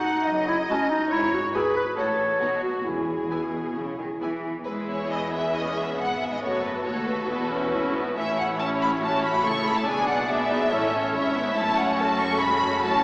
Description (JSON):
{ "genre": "quick classical-period movement for symphony orchestra", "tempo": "140 BPM", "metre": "4/4", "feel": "rubato", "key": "E major", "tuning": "A4 = 440 Hz", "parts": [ { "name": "rich studio violin section", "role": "second line", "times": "0.0-13.0 s", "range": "C#4 to F#5", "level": "-28 LUFS", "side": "equal", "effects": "none" }, { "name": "warm clarinet", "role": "second line", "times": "0.0-4.4 s", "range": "C#4 to C#5", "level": "-24 LUFS", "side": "equal", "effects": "none" }, { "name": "rich studio cello section", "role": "bass", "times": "0.3-13.0 s", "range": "D#2 to E3", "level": "-34 LUFS", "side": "equal", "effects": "none" }, { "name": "warm studio double bass section", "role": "bass", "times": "0.3-13.0 s", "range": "E1 to D#2", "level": "-39 LUFS", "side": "equal", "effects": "none" }, { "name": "rich studio violin section", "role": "melody", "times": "0.7-13.0 s", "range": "A4 to C#6", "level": "-26 LUFS", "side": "equal", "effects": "none" }, { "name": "clear studio viola section", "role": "accompaniment", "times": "0.7-13.0 s", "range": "F#3 to F#4", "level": "-29 LUFS", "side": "equal", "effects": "none" }, { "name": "timpani", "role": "percussion", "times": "2.9-3.5 s", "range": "E2", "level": "-44 LUFS", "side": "equal", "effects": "none" } ], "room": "wet concert hall reverb, RT60 2.4 s", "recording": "heard from further back in the room, small speaker sound", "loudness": "-22 LUFS", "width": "side -25 dB against mid", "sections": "0.0-4.7 A section; 4.7-13.0 B section", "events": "none", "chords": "0.0 D#m/F#; 1.1 E/G#; 2.0 F#m/A (rootless); 2.4 B; 2.9 E; 6.4 D#dim/F#; 7.3 E; 8.2 A; 9.9 G#dim/B; 10.7 A; 11.6 F#m", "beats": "0.27 0.70 | 1.12 1.55 1.97 2.41 | 2.85 3.31 3.77 4.21 | 4.67 5.11 5.54 5.99 | 6.42 6.86 7.29 7.73 | 8.16 8.59 9.02 9.45 | 9.87 10.30 10.72 11.15 | 11.58 12.00 12.42 12.85" }